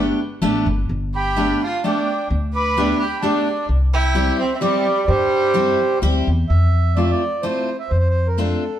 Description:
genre	musette waltz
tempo	128 BPM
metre	3/4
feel	straight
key	C major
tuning	A4 = 440 Hz
part	picked steel-string acoustic guitar	accompaniment	0.0-8.6 s	G3 to G4	-21 LUFS	left 1 dB	none
part	upright bass	bass	0.0-8.5 s	G1 to G2	-19 LUFS	equal	none
part	clear violin	second line	1.1-6.0 s	G3 to B4	-26 LUFS	right 2 dB	none
part	mellow accordion	melody	1.2-8.8 s	G4 to D6	-21 LUFS	right 2 dB	none
room	wet stone room reverb, RT60 1.0 s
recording	band playing live in one room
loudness	-16 LUFS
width	side -11 dB against mid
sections	0.0-6.5 A section; 6.5-8.8 B section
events	none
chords	0.0 Gadd9; 3.7 C; 6.5 Fmaj7; 7.9 Dm7/F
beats	0.41 | 0.89 1.37 1.84 | 2.31 2.77 3.23 | 3.69 4.16 4.62 | 5.08 5.55 6.03 | 6.50 6.98 7.45 | 7.92 8.38

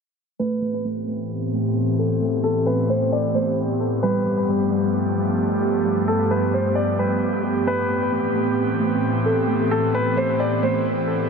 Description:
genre	hip hop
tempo	132 BPM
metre	4/4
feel	half-time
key	A minor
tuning	A4 = 443 Hz
part	felt-muted upright piano	melody	0.4-10.8 s	A4 to D5	-25 LUFS	left 1 dB	low-pass filter, ping-pong delay
part	airy breathy pad	sustained chords	0.7-11.3 s	G2 to G4	-22 LUFS	equal	chorus, low-pass filter
part	muted felt-like synth keys	arpeggios	0.4-11.3 s	G3 to A4	-25 LUFS	right 2 dB	chorus, phaser, low-pass filter, ping-pong delay
room	moderate huge ambient reverb, RT60 7.0 s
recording	none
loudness	-19 LUFS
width	side -5 dB against mid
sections	0.4-11.3 A section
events	filter sweep 0.4-11.3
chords	0.4 Am7; 4.0 G7; 7.7 Am7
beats	| 0.39 0.85 1.30 1.76 | 2.21 2.67 3.12 3.58 | 4.03 4.49 4.94 5.39 | 5.85 6.30 6.76 7.21 | 7.67 8.12 8.58 9.03 | 9.48 9.94 10.39 10.85

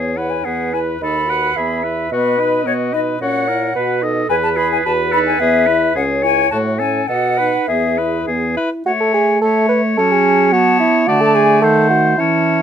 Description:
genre	quick classical-period movement for wind quintet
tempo	108 BPM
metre	2/4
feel	rubato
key	E major, A major from 8.9 s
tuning	A4 = 439 Hz
part	clear oboe	second line	0.0-12.6 s	F#4 to D#5	-20 LUFS	left 4 dB	none
part	dark French horn	accompaniment	0.0-12.6 s	D3 to G#4	-22 LUFS	equal	none
part	warm clarinet	accompaniment	0.0-12.6 s	A3 to F#5	-21 LUFS	right 4 dB	none
part	dark bassoon	bass	0.0-12.6 s	C#2 to B4	-18 LUFS	right 2 dB	none
part	concert flute	melody	0.2-12.6 s	B4 to B5	-19 LUFS	left 3 dB	none
room	little or no reverb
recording	close, detailed microphones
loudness	-13 LUFS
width	side -8 dB against mid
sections	0.0-8.9 A section; 8.9-12.6 B section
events	none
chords	0.0 E; 1.0 B7/D#; 1.6 E; 2.1 B; 3.2 F#7/A#; 3.8 B; 4.3 E; 4.9 B7/E; 5.4 E; 6.0 C#m; 6.5 F#m/A; 7.1 B7; 7.7 E; 8.9 A; 10.0 F#m; 11.1 D; 11.6 D#dim7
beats	0.45 | 1.01 1.57 | 2.12 2.67 | 3.22 3.76 | 4.30 4.86 | 5.41 5.96 | 6.53 7.09 | 7.68 8.27 | 8.85 9.41 | 9.97 10.52 | 11.07 11.62 | 12.18

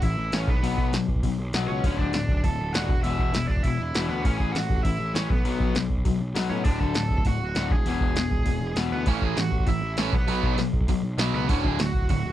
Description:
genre	punk rock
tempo	199 BPM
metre	4/4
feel	straight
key	D lydian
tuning	A4 = 440 Hz
part	high-gain lead guitar	melody	0.0-12.3 s	B3 to A5	-31 LUFS	right 3 dB	distortion
part	overdriven semi-hollow guitar	riff	0.0-12.2 s	D2 to B3	-29 LUFS	left 6 dB	none
part	fuzz picked electric bass	bass	0.0-12.3 s	D1 to A2	-29 LUFS	equal	overdrive
part	electro analog drum machine	drums	0.0-12.2 s	hi-hat, kick drum, snare drum	-24 LUFS	equal	none
part	distorted electric guitar	riff	9.1-12.2 s	D2 to B3	-29 LUFS	right 13 dB	overdrive
room	little or no reverb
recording	none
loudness	-22 LUFS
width	side -13 dB against mid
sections	0.0-12.3 A section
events	none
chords	0.5 B5; 1.8 D; 2.9 E5; 4.2 A; 5.3 B5; 6.7 D; 7.7 E; 9.1 A; 10.1 B5; 11.5 D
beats	0.03 0.33 | 0.63 0.93 1.23 1.53 | 1.84 2.14 2.44 2.74 | 3.04 3.34 3.64 3.94 | 4.25 4.55 4.85 5.15 | 5.45 5.75 6.05 6.36 | 6.66 6.96 7.26 7.56 | 7.87 8.17 8.47 8.77 | 9.07 9.38 9.68 9.98 | 10.28 10.59 10.89 11.19 | 11.49 11.79 12.10

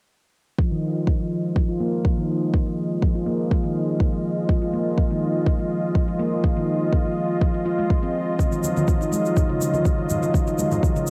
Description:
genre	afro house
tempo	123 BPM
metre	4/4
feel	straight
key	F phrygian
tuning	A4 = 440 Hz
part	warm analog pad	sustained chords	0.6-11.1 s	F3 to Eb5	-29 LUFS	equal	chorus, sidechain pumping, cassette tape
part	handpan	arpeggios	0.6-11.1 s	Db3 to F4	-27 LUFS	equal	sidechain pumping, low-pass filter, cassette tape, tape echo
part	electronic kick drum	drums	0.6-10.9 s	none	-24 LUFS	equal	cassette tape
part	congas	percussion	8.4-11.1 s	none	-31 LUFS	equal	none
part	egg shaker	percussion	8.4-11.1 s	none	-38 LUFS	equal	none
room	moderate studio ambience, RT60 0.5 s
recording	home recording on cassette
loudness	-22 LUFS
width	mono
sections	0.6-11.1 A section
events	filter sweep on handpan 0.6-11.1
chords	0.6 Fm7; 8.4 Ebmadd9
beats	| 0.59 1.08 1.56 2.05 | 2.54 3.03 3.52 4.00 | 4.49 4.98 5.47 5.95 | 6.44 6.93 7.42 7.91 | 8.39 8.88 9.37 9.86 | 10.34 10.83

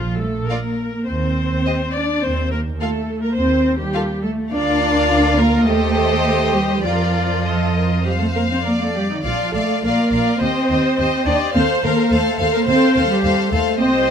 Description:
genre	quick classical-period movement for string orchestra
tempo	104 BPM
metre	4/4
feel	rubato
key	unclear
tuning	A4 = 440 Hz
part	rich chamber viola section	accompaniment	0.0-14.1 s	Eb4 to D5	-23 LUFS	right 2 dB	none
part	dark chamber double bass section	bass	0.0-14.1 s	Bb1 to F2	-23 LUFS	right 2 dB	none
part	dark studio cello section	bass	0.0-14.1 s	Eb3 to D4	-20 LUFS	right 1 dB	none
part	rich chamber violin section	melody	0.5-14.1 s	D5 to F5	-24 LUFS	left 8 dB	none
part	rich chamber violin section	second line	0.5-14.1 s	F4 to D5	-23 LUFS	left 2 dB	none
room	light reverb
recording	close, detailed microphones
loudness	-16 LUFS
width	side -7 dB against mid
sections	0.0-14.1 A section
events	none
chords	0.0 Bb5; 1.1 Cm/Eb; 2.2 F7/Eb (rootless); 4.5 Bb/D; 5.7 Cm/Eb; 6.8 Bb/F; 8.1 F; 9.2 Bb; 10.4 Cm/Eb; 11.6 F7/Eb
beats	0.49 1.08 1.66 | 2.24 2.81 3.38 3.94 | 4.53 5.10 5.67 6.25 | 6.84 7.45 8.06 8.65 | 9.25 9.83 10.40 10.98 | 11.55 12.12 12.68 13.23 | 13.80

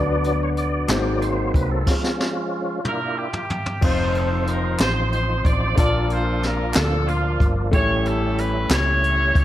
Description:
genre	slow gospel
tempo	62 BPM (dotted quarters)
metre	6/8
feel	straight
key	unclear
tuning	A4 = 440 Hz
part	clear concert grand piano	accompaniment	0.0-9.4 s	G#2 to A5	-26 LUFS	left 3 dB	none
part	mellow French horn section	sustained chords	0.0-1.9 s	F#3 to F#4	-37 LUFS	right 2 dB	none
part	tonewheel organ	sustained chords	0.0-9.4 s	E#3 to D5	-27 LUFS	right 1 dB	fast rotary speaker, chorus vibrato
part	hollow-body short-scale fingered electric bass	bass	0.0-9.4 s	F1 to D2	-23 LUFS	equal	none
part	jazz brush drum kit	drums	0.2-9.4 s	crash cymbal, hi-hat, kick drum, snare drum, toms	-23 LUFS	equal	none
part	group handclap	percussion	0.9-1.2, 4.8-9.0 s	none	-31 LUFS	left 2 dB	none
part	warm horn section	melody	2.9-9.4 s	Bb3 to D5	-24 LUFS	equal	none
room	light reverb, small room ambience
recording	none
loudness	-18 LUFS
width	side -13 dB against mid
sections	0.0-3.8 A section; 3.8-9.4 B section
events	tonewheel organ solo 0.0-3.8; drum fill 1.9-3.8; stop 1.9-3.8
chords	0.0 Bm/D; 0.9 G#7; 1.9 C#; 2.8 Gm6/Bb; 3.8 F7; 5.8 Bbmaj7; 7.7 A7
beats	0.89 | 1.87 2.85 | 3.82 4.80 | 5.78 6.75 | 7.73 8.70

